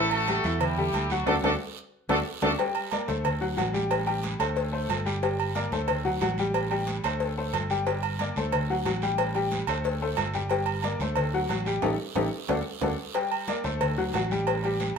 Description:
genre	latin, salsa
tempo	182 BPM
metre	4/4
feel	straight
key	G harmonic minor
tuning	A4 = 442 Hz
part	brilliant horn section	melody	0.0-2.5 s	F#3 to A4	-28 LUFS	right 1 dB	none
part	bright upright piano	accompaniment	0.0-14.9 s	E3 to G5	-29 LUFS	left 2 dB	none
part	fingered electric bass	bass	0.0-15.0 s	G1 to E2	-32 LUFS	right 1 dB	none
part	agogo bells and timbales	percussion	0.1-14.8 s	none	-32 LUFS	right 11 dB	none
part	congas	percussion	0.1-15.0 s	none	-37 LUFS	left 1 dB	none
part	cowbell	percussion	0.3-15.0 s	none	-33 LUFS	left 7 dB	none
part	guiro	percussion	0.3-15.0 s	none	-40 LUFS	right 7 dB	none
room	wet studio reverb, RT60 0.7 s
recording	minimal, uncompressed stereo recording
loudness	-25 LUFS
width	side -6 dB against mid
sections	0.0-2.6 A section; 2.6-13.2 B section; 13.2-15.0 B section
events	band accent 1.3-2.6, 11.8-13.2; drum fill 1.6-2.6, 12.2-13.2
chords	0.0 A5; 1.3 D; 2.6 Gmadd9; 3.2 D7; 3.9 Am7; 4.6 D5; 5.2 Gmadd9; 5.9 D7; 6.5 Am7; 7.2 D5; 7.9 Gmadd9; 8.5 D7; 9.2 Am7; 9.8 D5; 10.5 Gmadd9; 11.2 D7; 11.8 Gsus2/A; 12.5 D; 13.2 Gmadd9; 13.8 D7; 14.5 A7(no3)

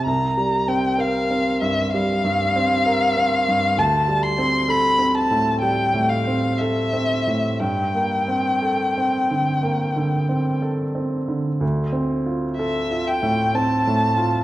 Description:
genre	classical, impressionist duo for violin and grand piano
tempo	59-66 BPM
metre	4/4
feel	rubato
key	unclear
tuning	A4 = 440 Hz
part	rich violin	melody	0.0-14.4 s	E5 to C6	-20 LUFS	left 1 dB	none
part	clear baby grand piano	accompaniment	0.0-14.4 s	C2 to Bb4	-21 LUFS	right 1 dB	none
room	wet recital hall reverb, RT60 1.6 s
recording	dark, warm production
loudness	-18 LUFS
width	side -15 dB against mid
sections	0.0-14.4 A section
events	none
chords	0.1 C7sus4; 3.8 D9sus4; 7.6 Gmadd9; 11.6 Dm7

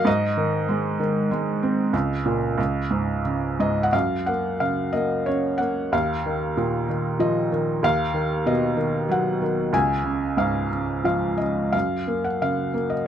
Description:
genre	classical, lyrical solo piano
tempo	87-98 BPM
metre	3/4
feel	rubato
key	F# major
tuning	A4 = 438 Hz
part	felt-muted upright piano	solo	0.0-13.1 s	C#2 to G#5	-21 LUFS	equal	none
room	light reverb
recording	close, detailed microphones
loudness	-21 LUFS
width	side -9 dB against mid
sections	0.0-3.9 A section; 3.9-13.1 B section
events	none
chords	0.1 G#; 1.9 A#madd11/C#; 2.6 C#5; 3.9 F#; 5.9 D#sus2; 7.8 B/D#; 9.7 C#; 11.7 F#

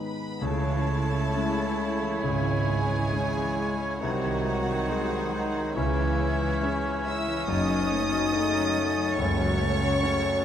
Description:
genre	classical, romantic movement for piano and orchestra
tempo	65-72 BPM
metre	4/4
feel	rubato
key	C# minor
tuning	A4 = 440 Hz
part	clear grand piano	melody	0.0-10.4 s	F#1 to C#5	-29 LUFS	left 2 dB	none
part	warm chamber violin section	melody	0.0-10.4 s	E5 to E6	-35 LUFS	equal	none
part	clear clarinet	second line	0.0-10.4 s	C#4 to E4	-37 LUFS	right 1 dB	none
part	concert flute	second line	0.0-10.4 s	G#6 to A6	-36 LUFS	equal	none
part	rich chamber violin section	second line	0.0-10.4 s	E4 to E5	-37 LUFS	equal	none
part	mellow bassoon	accompaniment	0.0-10.4 s	C#3 to F#3	-35 LUFS	right 3 dB	none
part	mellow French horn section	sustained chords	0.0-10.4 s	E3 to E4	-32 LUFS	left 4 dB	none
part	clear oboe	second line	0.4-10.4 s	B#4 to C#5	-37 LUFS	right 2 dB	none
part	clear chamber viola section	accompaniment	0.4-10.4 s	B#2 to E4	-36 LUFS	equal	none
part	rich chamber cello section	bass	0.4-9.9 s	C#2 to C#3	-35 LUFS	right 2 dB	none
part	rich chamber double bass section	bass	0.4-9.9 s	F#1 to C#2	-33 LUFS	right 3 dB	none
room	moderate scoring stage reverb, RT60 1.6 s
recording	none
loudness	-24 LUFS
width	side -9 dB against mid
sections	0.4-10.4 A section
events	none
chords	0.4 C#m; 4.0 G#/B#; 5.8 C#m; 7.5 F#m

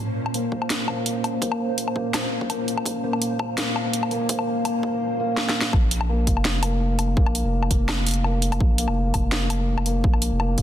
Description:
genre	half-time drum and bass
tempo	167 BPM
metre	4/4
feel	swing 54% on 16ths, half-time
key	Bb minor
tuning	A4 = 440 Hz
part	bowed-like drone	sustained chords	0.0-5.0 s	Bb2 to C5	-31 LUFS	right 1 dB	built-in reverb, sidechain pumping
part	pulsing gated texture	texture	0.0-5.0 s	C5	-35 LUFS	right 3 dB	chorus, built-in reverb
part	felt-muted upright piano	arpeggios	0.3-10.6 s	Bb3	-26 LUFS	left 1 dB	low-pass filter, dub echo
part	drum and bass drum kit	drums	0.3-10.6 s	hi-hat, snare drum, woodblock	-27 LUFS	left 1 dB	overdrive
part	electronic kick drum	drums	0.5-10.6 s	none	-22 LUFS	equal	high-pass filter on kick
part	saturated sub bass	bass	5.7-10.6 s	F1 to Bb1	-23 LUFS	equal	none
room	moderate echo chamber reverb, RT60 2.2 s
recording	dense, heavily limited modern master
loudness	-20 LUFS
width	side -11 dB against mid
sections	0.0-5.7 A section; 5.7-10.6 B section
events	build-up 0.0-5.7; filter sweep on felt piano 0.0-5.7; drum fill 5.4-5.7; drop 5.7-10.6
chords	0.0 Bbmadd9; 5.7 Bb5

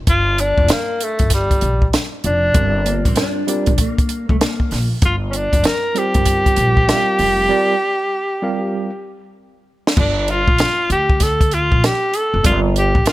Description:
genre	hip hop, jazz-hop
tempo	97 BPM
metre	4/4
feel	swing 64% on 16ths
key	G minor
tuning	A4 = 439 Hz
part	upright bass	bass	0.0-13.1 s	F1 to D2	-20 LUFS	equal	none
part	breathy tenor saxophone	melody	0.1-13.1 s	G3 to Bb4	-18 LUFS	equal	none
part	compact cocktail drum kit	drums	0.1-13.1 s	crash cymbal, hi-hat, kick drum, snare drum	-17 LUFS	equal	none
part	mellow tine electric piano	accompaniment	2.5-12.7 s	G3 to F5	-22 LUFS	right 3 dB	medium stereo tremolo
part	mellow electric guitar	second line	2.9-4.9 s	A3 to D4	-23 LUFS	left 2 dB	spring reverb
room	small room ambience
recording	none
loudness	-14 LUFS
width	side -16 dB against mid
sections	0.1-10.0 A section; 10.0-13.1 B section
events	break 7.5-10.0; drum fill 8.7-10.0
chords	0.1 Gm7

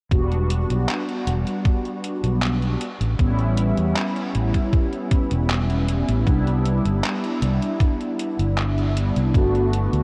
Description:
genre	vaporwave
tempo	78 BPM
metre	4/4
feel	straight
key	E minor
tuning	A4 = 439 Hz
part	mellow synth brass	accompaniment	0.1-10.0 s	G3 to F#4	-26 LUFS	equal	phaser, lush chorus, analog delay
part	fretless electric bass	bass	0.1-10.0 s	E1 to E2	-24 LUFS	equal	tube saturation
part	detuned 8-bit digital drum machine	drums	0.1-10.0 s	handclaps, hi-hat	-34 LUFS	equal	overdrive
part	electronic kick drum	drums	0.1-9.5 s	none	-22 LUFS	equal	overdrive
room	moderate huge ambient reverb, RT60 5.1 s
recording	dreamy mix soaked in reverb, cassette tape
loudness	-22 LUFS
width	mono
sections	0.1-10.0 A section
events	none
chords	0.1 Em9; 2.8 A9; 6.3 Cmaj7; 9.3 Gmaj9

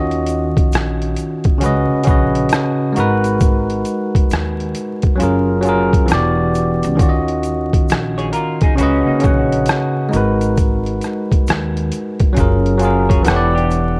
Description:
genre	lo-fi hip hop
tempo	67 BPM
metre	4/4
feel	swing 65% on 16ths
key	unclear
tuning	A4 = 441 Hz
part	bell-like tine electric piano	accompaniment	0.0-14.0 s	C#3 to F#5	-19 LUFS	equal	cassette tape
part	upright bass	bass	0.0-14.0 s	E1 to D#2	-23 LUFS	equal	none
part	boom bap sampler-style drum kit	drums	0.1-14.0 s	hi-hat, kick drum, rim click	-19 LUFS	equal	none
part	egg shaker	percussion	0.3-14.0 s	none	-44 LUFS	equal	none
part	semi-hollow electric guitar	second line	8.2-14.0 s	A#3 to C#5	-27 LUFS	equal	lush chorus, analog delay
room	light reverb, digital ambience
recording	vinyl crackle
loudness	-16 LUFS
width	mono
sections	0.0-14.0 A section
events	none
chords	0.0 D#m7; 1.6 C#9sus4; 3.0 G#m9; 5.2 F#maj7; 6.1 Em7; 7.0 D#m7; 8.8 C#9sus4; 10.1 G#m9; 12.4 F#maj7; 13.3 Em7

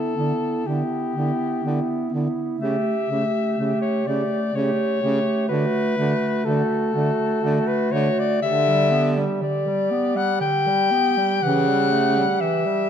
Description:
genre	classical, lyrical piece for single-reed quartet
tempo	61 BPM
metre	3/4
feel	rubato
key	D major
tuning	A4 = 439 Hz
part	clear soprano saxophone	melody	0.0-12.9 s	G4 to G5	-23 LUFS	left 6 dB	none
part	warm alto saxophone	second line	0.0-12.9 s	E4 to G4	-26 LUFS	right 11 dB	none
part	mellow clarinet	accompaniment	0.0-12.9 s	D3 to B3	-25 LUFS	left 1 dB	none
part	warm baritone saxophone	bass	0.2-12.2 s	C#3 to D3	-25 LUFS	right 2 dB	none
room	wet recital hall reverb, RT60 1.8 s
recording	dark, warm production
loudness	-19 LUFS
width	side -8 dB against mid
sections	0.0-12.9 A section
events	none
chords	0.0 Em7/D; 2.6 A7/C#; 5.5 D; 8.4 G/D; 11.4 A7/C#

